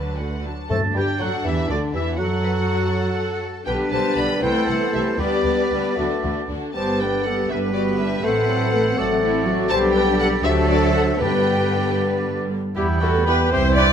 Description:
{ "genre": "quick classical-period movement for symphony orchestra", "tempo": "75-83 BPM (dotted quarters)", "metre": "6/8", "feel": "rubato", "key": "G major", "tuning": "A4 = 440 Hz", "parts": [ { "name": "rich studio violin section", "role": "melody", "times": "0.0-13.8 s", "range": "D5 to B5", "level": "-28 LUFS", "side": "left 2 dB", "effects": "none" }, { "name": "rich chamber violin section", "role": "second line", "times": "0.0-13.9 s", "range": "A3 to C5", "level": "-30 LUFS", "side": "left 2 dB", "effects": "none" }, { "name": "rich chamber viola section", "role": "accompaniment", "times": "0.0-13.9 s", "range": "D3 to D5", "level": "-26 LUFS", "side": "right 2 dB", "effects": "none" }, { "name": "clear symphonic cello section", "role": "bass", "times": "0.0-13.9 s", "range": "D3 to B4", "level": "-28 LUFS", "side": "equal", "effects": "none" }, { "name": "rich chamber double bass section", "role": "bass", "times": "0.0-13.9 s", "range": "G1 to A2", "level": "-25 LUFS", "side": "right 2 dB", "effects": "none" }, { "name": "clear oboe", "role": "second line", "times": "0.7-13.9 s", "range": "B4 to A5", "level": "-29 LUFS", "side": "right 2 dB", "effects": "none" }, { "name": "concert flute", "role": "second line", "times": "0.7-13.9 s", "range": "F#4 to C6", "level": "-28 LUFS", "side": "left 2 dB", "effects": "none" }, { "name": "dark clarinet", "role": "second line", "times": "0.7-13.9 s", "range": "D4 to D5", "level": "-29 LUFS", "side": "left 1 dB", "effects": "none" }, { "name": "mellow bassoon", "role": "accompaniment", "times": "0.7-13.9 s", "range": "D3 to C4", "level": "-29 LUFS", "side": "right 1 dB", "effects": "none" }, { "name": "mellow French horn section", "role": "sustained chords", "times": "0.7-13.9 s", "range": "D3 to A4", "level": "-27 LUFS", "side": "left 4 dB", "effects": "none" }, { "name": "timpani", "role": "percussion", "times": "0.7-1.4, 11.2-11.9 s", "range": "G2", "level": "-29 LUFS", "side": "left 1 dB", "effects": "none" }, { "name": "clear trumpet", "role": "stabs", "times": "12.8-13.9 s", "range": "E4 to B4", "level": "-27 LUFS", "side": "right 2 dB", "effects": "none" } ], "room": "light reverb", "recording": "close, detailed microphones", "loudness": "-18 LUFS", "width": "side -8 dB against mid", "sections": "0.7-12.8 A section; 12.8-13.9 B section", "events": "none", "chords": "0.0 D; 0.7 G5; 2.2 F#m; 3.7 G; 4.4 Am; 5.2 G; 6.0 D; 6.8 G; 8.2 F#dim/A; 9.7 G/B; 10.4 D; 11.2 G; 12.8 Em", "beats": "| 0.71 1.47 | 2.19 2.93 | 3.67 4.43 | 5.19 5.97 | 6.75 7.50 | 8.24 8.98 | 9.70 10.45 | 11.21 11.98 | 12.77 13.52" }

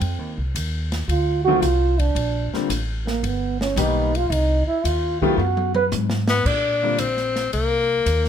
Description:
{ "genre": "jazz, small-group swing and bop", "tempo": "112 BPM", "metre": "4/4", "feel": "swing 69% on 8ths", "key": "Bb major", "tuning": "A4 = 440 Hz", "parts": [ { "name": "trombone with bucket mute", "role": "second line", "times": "0.0-5.9 s", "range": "Bb3 to Cb5", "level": "-22 LUFS", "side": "right 4 dB", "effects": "none" }, { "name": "upright bass", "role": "bass", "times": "0.0-8.3 s", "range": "G1 to Bb2", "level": "-23 LUFS", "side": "equal", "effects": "none" }, { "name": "open jazz drum kit", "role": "drums", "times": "0.0-8.3 s", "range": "crash cymbal, hi-hat, kick drum, ride cymbal, snare drum, toms", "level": "-29 LUFS", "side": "left 1 dB", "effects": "none" }, { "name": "clear concert grand piano", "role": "accompaniment", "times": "1.5-7.0 s", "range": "D3 to G4", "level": "-23 LUFS", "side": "left 6 dB", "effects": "none" }, { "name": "bright tenor saxophone", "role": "melody", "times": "6.3-8.3 s", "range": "Bb3 to D4", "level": "-20 LUFS", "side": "left 4 dB", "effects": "plate reverb" } ], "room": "light reverb", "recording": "none", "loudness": "-19 LUFS", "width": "side -8 dB against mid", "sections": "0.0-6.5 A section; 6.5-8.3 B section", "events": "trombone solo 0.0-6.5; drum fill 5.4-6.5", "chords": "0.0 F7(no3); 2.2 Bb69; 3.2 Gaug; 4.3 Cm; 5.4 Gbsus24; 6.5 Bbadd9", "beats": "| 0.02 0.55 1.09 1.63 | 2.16 2.70 3.24 3.77 | 4.31 4.84 5.38 5.92 | 6.46 6.99 7.53 8.06" }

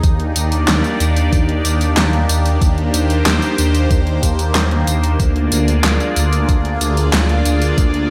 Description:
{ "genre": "synthwave", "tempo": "93 BPM", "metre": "4/4", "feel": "straight", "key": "unclear", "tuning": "A4 = 440 Hz", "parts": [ { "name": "phased analog pad", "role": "sustained chords", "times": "0.0-8.1 s", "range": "Bb3 to D5", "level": "-22 LUFS", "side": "equal", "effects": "phaser, chorus, sidechain pumping" }, { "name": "dark detuned saw bass", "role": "bass", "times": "0.0-8.1 s", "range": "D2 to Eb2", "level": "-19 LUFS", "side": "equal", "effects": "none" }, { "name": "electronic kick drum", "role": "drums", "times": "0.0-7.9 s", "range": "none", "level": "-17 LUFS", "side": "equal", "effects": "overdrive" }, { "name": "pop drum kit", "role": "drums", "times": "0.0-8.1 s", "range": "handclaps, hi-hat, snare drum, tambourine", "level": "-22 LUFS", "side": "equal", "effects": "overdrive, gated reverb" } ], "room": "moderate plate reverb, RT60 2.0 s", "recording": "bright 1980s-style digital production", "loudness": "-16 LUFS", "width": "mono", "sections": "0.0-8.1 A section", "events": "none", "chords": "0.0 Ebmaj7; 5.2 Bb7/D", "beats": "| 0.04 0.68 1.33 1.97 | 2.62 3.26 3.91 4.55 | 5.20 5.84 6.49 7.13 | 7.78" }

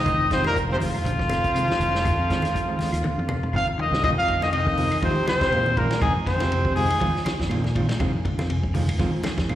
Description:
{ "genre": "afrobeat", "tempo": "121 BPM", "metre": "4/4", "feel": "swing 55% on 16ths", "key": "F dorian", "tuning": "A4 = 440 Hz", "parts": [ { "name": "clear trumpet", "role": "melody", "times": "0.0-7.2 s", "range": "F4 to F5", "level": "-24 LUFS", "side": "left 1 dB", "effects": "slapback echo" }, { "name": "clear trombone section", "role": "second line", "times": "0.0-7.2 s", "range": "F2 to F3", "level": "-33 LUFS", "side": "right 1 dB", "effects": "slapback echo" }, { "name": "raspy alto saxophone", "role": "second line", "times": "0.0-7.2 s", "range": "F3 to F4", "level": "-34 LUFS", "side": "right 3 dB", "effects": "slapback echo" }, { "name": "mellow electric guitar", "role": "stabs", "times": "0.0-9.6 s", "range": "Eb3 to F4", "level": "-31 LUFS", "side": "right 4 dB", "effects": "slapback echo" }, { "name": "fingered electric bass", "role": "bass", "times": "0.0-9.6 s", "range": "F1 to F3", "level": "-26 LUFS", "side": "equal", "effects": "none" }, { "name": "semi-hollow electric guitar", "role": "arpeggios", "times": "0.1-9.4 s", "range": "C3 to Ab3", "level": "-32 LUFS", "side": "left 4 dB", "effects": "none" }, { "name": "warm soul drum kit", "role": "drums", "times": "0.1-9.6 s", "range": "hi-hat, kick drum, ride cymbal, snare drum, toms", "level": "-29 LUFS", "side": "equal", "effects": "none" }, { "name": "claves", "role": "percussion", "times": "0.1-9.6 s", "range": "none", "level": "-41 LUFS", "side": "right 1 dB", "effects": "none" }, { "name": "congas", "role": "percussion", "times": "0.1-9.4 s", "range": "none", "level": "-32 LUFS", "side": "equal", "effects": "slapback echo" } ], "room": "light reverb", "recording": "live gig heard through the venue's PA, recital hall reverb", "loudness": "-20 LUFS", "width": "side -12 dB against mid", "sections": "0.0-4.0 A section; 4.0-9.6 B section", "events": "drum fill 3.0-4.0", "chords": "0.0 Fm7", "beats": "| 0.06 0.55 1.05 1.55 | 2.04 2.54 3.04 3.53 | 4.03 4.52 5.02 5.51 | 6.01 6.51 7.00 7.50 | 7.99 8.49 8.99 9.48" }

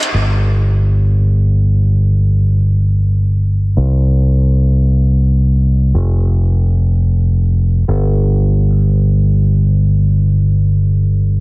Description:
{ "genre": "house", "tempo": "free time", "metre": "none", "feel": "none", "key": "unclear", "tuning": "A4 = 442 Hz", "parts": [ { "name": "modern bright fingered electric bass", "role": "bass", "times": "0.1-11.4 s", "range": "F1 to C2", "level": "-10 LUFS", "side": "equal", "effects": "tube saturation, low-pass filter" } ], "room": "little or no reverb", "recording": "heavily compressed radio sound", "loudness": "-11 LUFS", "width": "side -29 dB against mid", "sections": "0.1-11.4 A section", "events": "none", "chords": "none", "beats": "free time" }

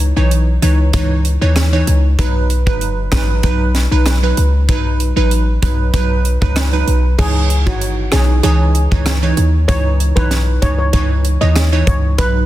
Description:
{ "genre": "dancehall", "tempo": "96 BPM", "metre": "4/4", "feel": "straight", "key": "C# minor", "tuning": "A4 = 440 Hz", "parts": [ { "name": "hard-hitting 808-style bass", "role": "bass", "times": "0.0-12.5 s", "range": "F#1 to D#2", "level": "-14 LUFS", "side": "equal", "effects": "none" }, { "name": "crisp fusion drum kit", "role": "drums", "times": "0.0-12.3 s", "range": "crash cymbal, hi-hat, kick drum, rim click, snare drum", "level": "-19 LUFS", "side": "equal", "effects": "none" }, { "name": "glassy wavetable pluck", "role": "accompaniment", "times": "0.2-12.4 s", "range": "E3 to C#5", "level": "-19 LUFS", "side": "right 3 dB", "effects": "chorus" }, { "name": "steel pan", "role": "melody", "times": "7.2-12.3 s", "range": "F#4 to D#5", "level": "-22 LUFS", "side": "left 2 dB", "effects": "ping-pong delay" } ], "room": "studio reverb", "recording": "dense, heavily limited modern master", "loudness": "-12 LUFS", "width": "side -14 dB against mid", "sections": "0.0-7.2 A section; 7.2-12.5 B section", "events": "none", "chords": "0.0 C#madd9; 2.2 B; 7.2 C#madd9", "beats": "0.31 0.94 1.56 | 2.19 2.81 3.44 4.06 | 4.69 5.31 5.94 6.56 | 7.19 7.81 8.44 9.06 | 9.69 10.31 10.94 11.56 | 12.19" }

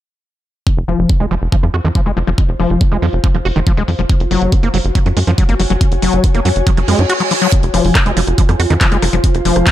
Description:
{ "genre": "psychedelic trance", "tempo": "140 BPM", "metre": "4/4", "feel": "straight", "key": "F phrygian", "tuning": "A4 = 440 Hz", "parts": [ { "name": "electronic kick drum", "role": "drums", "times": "0.7-9.7 s", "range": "none", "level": "-13 LUFS", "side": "equal", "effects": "overdrive" }, { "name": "techno drum kit", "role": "drums", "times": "0.7-9.7 s", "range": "handclaps, hi-hat, rim click", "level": "-21 LUFS", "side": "equal", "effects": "low-pass filter on hats, low-pass filter on snare, low-pass filter on room" }, { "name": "ethereal airy pad", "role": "texture", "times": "1.8-9.7 s", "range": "F4 to Ab5", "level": "-22 LUFS", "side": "left 1 dB", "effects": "ensemble chorus, built-in reverb, sidechain pumping" }, { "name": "tight sequencer bass", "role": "bass", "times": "0.8-9.6 s", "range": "F1 to Gb2", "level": "-16 LUFS", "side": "equal", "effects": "none" }, { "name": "overdriven acid bass", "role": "riff", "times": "0.9-9.7 s", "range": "Eb3 to Gb4", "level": "-18 LUFS", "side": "moving between left 6 dB and right 6 dB", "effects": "distortion, auto-pan, sidechain pumping, tape echo" }, { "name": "reverse cymbal", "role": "sound effects", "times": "6.8-7.5 s", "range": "none", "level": "-21 LUFS", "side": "right 6 dB", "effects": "none" } ], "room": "digital ambience", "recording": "none", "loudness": "-11 LUFS", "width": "side -13 dB against mid", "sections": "0.7-7.5 A section; 7.5-9.7 B section", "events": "fade-in on ambient pad 0.7-7.5; filter sweep on drum 0.7-7.5; filter sweep on acid bass 0.7-7.5; reverse cymbal 6.8-7.5; kick drops out 7.1-7.5", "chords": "0.7 F5; 4.1 Gb5; 7.5 F5", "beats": "| 0.67 1.09 1.52 1.95 | 2.38 2.81 3.24 3.67 | 4.09 4.52 4.95 5.38 | 5.81 6.24 6.67 7.09 | 7.52 7.95 8.38 8.81 | 9.24 9.67" }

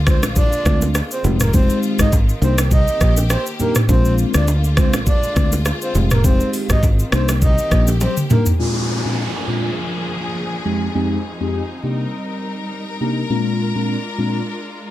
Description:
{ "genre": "afrobeats", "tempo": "102 BPM", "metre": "4/4", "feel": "swing 55% on 16ths", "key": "unclear", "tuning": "A4 = 440 Hz", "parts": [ { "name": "warm studio string section", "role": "sustained chords", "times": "0.0-14.9 s", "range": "D3 to Bb4", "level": "-28 LUFS", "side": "left 1 dB", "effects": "none" }, { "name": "fingered electric bass", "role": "bass", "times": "0.0-8.1 s", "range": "F1 to D2", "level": "-18 LUFS", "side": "equal", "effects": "none" }, { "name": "breathy flute-like synth lead", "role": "melody", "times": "0.1-8.4 s", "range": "Bb4 to Eb5", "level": "-24 LUFS", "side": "equal", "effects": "chorus, tape echo" }, { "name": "mellow FM electric piano", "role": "accompaniment", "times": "0.1-14.4 s", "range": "F2 to G4", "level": "-21 LUFS", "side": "left 1 dB", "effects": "chorus, phaser" }, { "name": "afro-pop drum kit", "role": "drums", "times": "0.1-8.6 s", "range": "hi-hat, kick drum, rim click, shaker, toms", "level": "-17 LUFS", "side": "equal", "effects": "none" }, { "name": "bongos and congas", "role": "percussion", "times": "0.1-8.5 s", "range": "none", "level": "-26 LUFS", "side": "right 2 dB", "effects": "none" }, { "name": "downlifter", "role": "sound effects", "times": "8.6-13.3 s", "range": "none", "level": "-28 LUFS", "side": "equal", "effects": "none" } ], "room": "light reverb", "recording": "none", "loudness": "-15 LUFS", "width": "side -14 dB against mid", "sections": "0.0-8.6 A section; 8.6-14.9 B section", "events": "drum fill 8.0-8.6", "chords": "0.0 Bb7; 1.2 Fm7; 2.4 Cm7; 3.9 Bb7; 5.9 Fm7; 7.1 Cm7; 8.6 Bb7; 10.7 Fm7; 11.8 Cm7; 13.3 Bb7", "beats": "0.36 0.95 | 1.54 2.13 2.71 3.30 | 3.89 4.48 5.07 5.66 | 6.24 6.83 7.42 8.01 | 8.60 9.18 9.77 10.36 | 10.95 11.54 12.13 12.71 | 13.30 13.89 14.48" }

